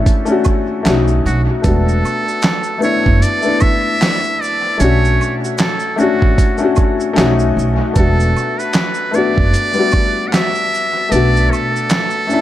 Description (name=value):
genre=lo-fi hip hop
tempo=76 BPM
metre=4/4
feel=swing 57% on 16ths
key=B minor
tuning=A4 = 440 Hz
part: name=warm upright piano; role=accompaniment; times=0.0-12.4 s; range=G3 to F#4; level=-17 LUFS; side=left 4 dB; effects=cassette tape, dub echo
part: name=upright bass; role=bass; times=0.0-11.5 s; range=E1 to B1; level=-16 LUFS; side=right 1 dB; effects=none
part: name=dusty soul sampler-style drum kit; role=drums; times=0.1-12.4 s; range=handclaps, hi-hat, kick drum, shaker, snare drum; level=-17 LUFS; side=right 1 dB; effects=overdrive
part: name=maracas and woodblock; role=percussion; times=0.1-12.4 s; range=none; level=-31 LUFS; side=right 6 dB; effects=none
part: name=trumpet with metal mute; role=melody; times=1.3-12.4 s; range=F#4 to F#5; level=-19 LUFS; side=right 1 dB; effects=dub echo
room=light reverb, studio ambience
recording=echo-heavy mix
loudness=-12 LUFS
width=side -13 dB against mid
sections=0.0-12.4 A section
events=none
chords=0.0 Bm9 (rootless); 0.9 B9; 1.6 E9sus4; 4.8 Bm9; 7.2 B9; 8.0 E9sus4; 11.1 Bm7